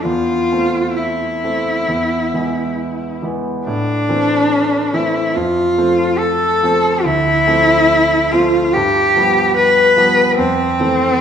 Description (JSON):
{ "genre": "classical, romantic duo for cello and grand piano", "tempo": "65-74 BPM", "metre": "4/4", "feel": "rubato", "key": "A minor", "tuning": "A4 = 439 Hz", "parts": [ { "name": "rich cello", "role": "melody", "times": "0.0-11.2 s", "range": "C4 to B4", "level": "-14 LUFS", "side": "left 1 dB", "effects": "none" }, { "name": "clear concert grand piano", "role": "accompaniment", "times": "0.0-11.2 s", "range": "D2 to C4", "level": "-20 LUFS", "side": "right 1 dB", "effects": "none" } ], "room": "moderate scoring stage reverb, RT60 1.7 s", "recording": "minimal, uncompressed stereo recording", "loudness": "-13 LUFS", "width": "side -8 dB against mid", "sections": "0.0-11.2 A section", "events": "none", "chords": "0.1 Am/E; 1.9 E; 3.7 Am; 5.4 F; 7.0 Dm7; 8.7 G7; 10.4 Fmaj7", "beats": "| 0.05 0.97 1.87 2.77 | 3.66 4.51 5.36 6.20 | 7.05 7.90 8.75 9.56 | 10.39" }